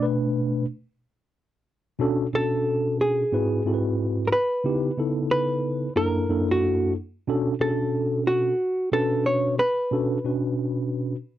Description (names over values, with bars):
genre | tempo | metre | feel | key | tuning
hip hop | 91 BPM | 4/4 | swing 66% on 16ths | B minor | A4 = 440 Hz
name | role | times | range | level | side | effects
mellow tine electric piano | accompaniment | 0.0-11.2 s | F#2 to B4 | -24 LUFS | equal | medium stereo tremolo
hollow-body jazz guitar | melody | 2.4-11.4 s | F#4 to C#5 | -24 LUFS | equal | none
room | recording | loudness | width
light reverb | dry, close 1970s-style studio recording | -22 LUFS | side -12 dB against mid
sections
0.0-2.0 A section; 2.0-11.4 B section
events
tine electric piano solo 0.0-2.0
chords
0.0 Bm7; 3.3 G#7alt; 4.6 C#m7b5; 6.0 F#7alt; 7.3 Bm7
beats
0.03 0.69 1.35 | 2.01 2.67 3.33 3.98 | 4.64 5.30 5.96 6.62 | 7.28 7.94 8.60 9.26 | 9.92 10.58 11.24